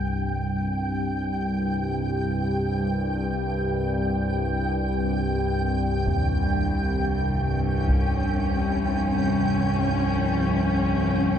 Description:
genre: dark ambient drone.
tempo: free time.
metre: none.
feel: none.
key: C phrygian.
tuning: A4 = 440 Hz.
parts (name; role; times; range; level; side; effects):
analog drone; drone; 0.0-11.4 s; C2 to G2; -24 LUFS; equal; chorus.
flickering grainy texture; texture; 0.0-11.4 s; G5; -31 LUFS; right 2 dB; built-in reverb.
warm chamber cello section; sustained chords; 6.1-11.4 s; C2 to Db4; -27 LUFS; left 2 dB; none.
gamelan-type bossed gongs; arpeggios; 6.1-11.4 s; Eb2; -32 LUFS; right 1 dB; none.
taiko ensemble; percussion; 6.1-8.1 s; none; -29 LUFS; equal; none.
room: wet huge ambient reverb, RT60 7.6 s.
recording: none.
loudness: -22 LUFS.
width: side -9 dB against mid.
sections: 0.0-11.4 A section.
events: none.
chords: 0.0 C5; 6.1 Db/C.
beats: free time.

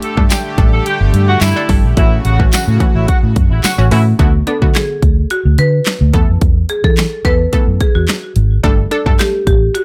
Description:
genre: dance-pop.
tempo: 108 BPM.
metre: 4/4.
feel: straight.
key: unclear.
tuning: A4 = 440 Hz.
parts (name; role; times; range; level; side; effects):
mellow horn section; melody; 0.0-4.0 s; E4 to A4; -22 LUFS; equal; sidechain pumping, digital delay.
soft supersaw; sustained chords; 0.0-4.2 s; C#3 to G4; -25 LUFS; equal; sidechain pumping.
pop drum kit; drums; 0.0-9.8 s; handclaps, hi-hat, kick drum, snare drum; -16 LUFS; equal; none.
unison pluck; accompaniment; 0.2-9.6 s; D3 to A4; -22 LUFS; equal; sidechain pumping.
vintage muted fingered electric bass; bass; 0.2-9.7 s; G1 to E3; -15 LUFS; equal; sidechain pumping.
tambourine; percussion; 0.3-3.8 s; none; -26 LUFS; equal; none.
marimba with medium hard mallets; melody; 4.5-9.8 s; F#4 to B4; -20 LUFS; equal; none.
room: little or no reverb.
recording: none.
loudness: -13 LUFS.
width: mono.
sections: 0.0-4.2 A section; 4.2-9.8 B section.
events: none.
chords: 0.0 Gsus2; 2.0 A6; 4.2 D6; 6.1 Esus4; 8.6 Gsus2.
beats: 0.30 0.86 1.42 | 1.97 2.53 3.08 3.64 | 4.19 4.75 5.30 5.86 | 6.42 6.97 7.53 8.08 | 8.64 9.19 9.75.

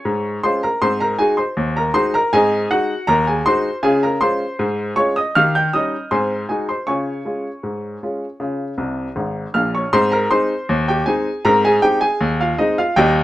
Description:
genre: ragtime piano.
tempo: 79 BPM.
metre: 2/4.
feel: straight.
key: Db major, Ab major from 9.9 s.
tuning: A4 = 440 Hz.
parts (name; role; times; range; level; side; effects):
clear upright piano; solo; 0.0-13.2 s; Ab1 to G6; -16 LUFS; equal; none.
room: light reverb.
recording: none.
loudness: -16 LUFS.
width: side -15 dB against mid.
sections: 0.0-9.9 A section; 9.9-13.2 B section.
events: upright piano fill 8.8-9.9.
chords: 0.0 Db; 0.8 Ab7; 3.8 Db; 5.3 Eb7; 6.1 Ab7; 6.9 Db; 9.9 Ab.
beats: 0.05 | 0.81 1.57 | 2.33 3.08 | 3.84 4.59 | 5.35 6.11 | 6.87 7.63 | 8.40 9.16 | 9.92 10.68 | 11.44 12.20 | 12.96.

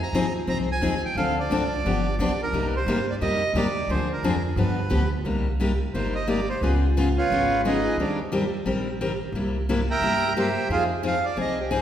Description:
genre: acoustic string swing (jazz manouche).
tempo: 176 BPM.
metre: 4/4.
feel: swing 62% on 8ths.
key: C minor.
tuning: A4 = 441 Hz.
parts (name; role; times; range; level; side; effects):
accordion; melody; 0.0-11.8 s; D4 to Bb5; -26 LUFS; right 3 dB; none.
upright bass; bass; 0.0-11.8 s; G1 to G2; -28 LUFS; equal; none.
picked steel-string acoustic guitar; accompaniment; 0.1-11.8 s; C3 to Bb4; -25 LUFS; left 2 dB; none.
room: wet scoring stage reverb, RT60 1.8 s.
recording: recorded in a church or concert hall.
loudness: -22 LUFS.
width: side -10 dB against mid.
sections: 0.0-5.2 A section; 5.2-11.8 B section.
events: accordion solo 5.2-11.8.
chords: 0.0 Fm7; 1.2 Dm7; 1.8 G7; 2.5 Cm7; 3.9 Dm7b5; 4.6 G7; 5.2 Cm7; 6.6 Db9; 8.0 Eb6; 9.3 C7; 10.7 Fm7.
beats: 0.14 0.47 0.82 | 1.16 1.50 1.84 2.18 | 2.52 2.86 3.20 3.54 | 3.88 4.22 4.57 4.91 | 5.25 5.59 5.93 6.27 | 6.62 6.96 7.30 7.64 | 7.98 8.32 8.66 9.00 | 9.34 9.68 10.02 10.36 | 10.70 11.03 11.37 11.71.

